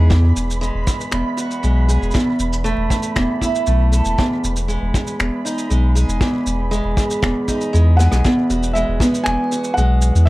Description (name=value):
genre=folktronica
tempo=118 BPM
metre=4/4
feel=straight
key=E major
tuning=A4 = 440 Hz
part: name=picked acoustic archtop guitar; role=arpeggios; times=0.0-10.3 s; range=E2 to A4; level=-20 LUFS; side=right 1 dB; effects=vintage 12-bit sampler grit, tape echo
part: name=warm sub bass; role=bass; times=0.0-10.3 s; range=E1 to E2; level=-16 LUFS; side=equal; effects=none
part: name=flickering grainy texture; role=texture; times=0.0-8.3 s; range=B5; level=-32 LUFS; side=right 4 dB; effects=built-in reverb
part: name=kick drum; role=drums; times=0.1-9.1 s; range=none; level=-20 LUFS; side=equal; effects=none
part: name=shaker, finger snaps and rim click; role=drums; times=0.1-10.3 s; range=none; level=-27 LUFS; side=equal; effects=none
part: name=felt-muted upright piano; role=melody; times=8.0-10.3 s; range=E5 to G#5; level=-22 LUFS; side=equal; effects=tape echo
room=light reverb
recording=vinyl crackle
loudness=-15 LUFS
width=side -18 dB against mid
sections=0.0-8.2 A section; 8.2-10.3 B section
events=drum fill 8.0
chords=0.1 Eadd9; 2.1 A5/E; 4.2 G#m/E; 8.2 Eadd9